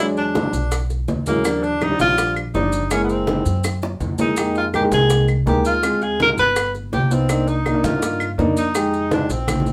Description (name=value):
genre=Afro-Cuban jazz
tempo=164 BPM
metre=4/4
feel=straight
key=unclear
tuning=A4 = 440 Hz
part: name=clear tenor saxophone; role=melody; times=0.0-9.7 s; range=Bb3 to B4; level=-24 LUFS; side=equal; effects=none
part: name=warm baby grand piano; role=accompaniment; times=0.0-9.3 s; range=F3 to C#5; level=-24 LUFS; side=equal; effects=none
part: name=upright bass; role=bass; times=0.0-9.7 s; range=F#1 to G2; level=-26 LUFS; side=equal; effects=none
part: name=bongos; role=percussion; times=0.2-9.7 s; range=none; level=-30 LUFS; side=equal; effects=none
part: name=congas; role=percussion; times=0.2-9.7 s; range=none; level=-29 LUFS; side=equal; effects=none
part: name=maracas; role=percussion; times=0.2-9.7 s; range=none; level=-37 LUFS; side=equal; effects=none
part: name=claves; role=percussion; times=0.7-9.7 s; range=none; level=-32 LUFS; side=equal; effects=none
room=wet studio ambience, RT60 0.4 s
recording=band playing live in one room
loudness=-19 LUFS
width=mono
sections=0.0-9.7 A section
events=drum fill 3.6-4.4, 9.5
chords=0.0 E13; 1.4 Ebmaj9; 2.9 F#9; 4.4 Fm11; 5.8 Dm7b5; 6.6 G7b13; 7.3 Cm9; 8.8 Fm7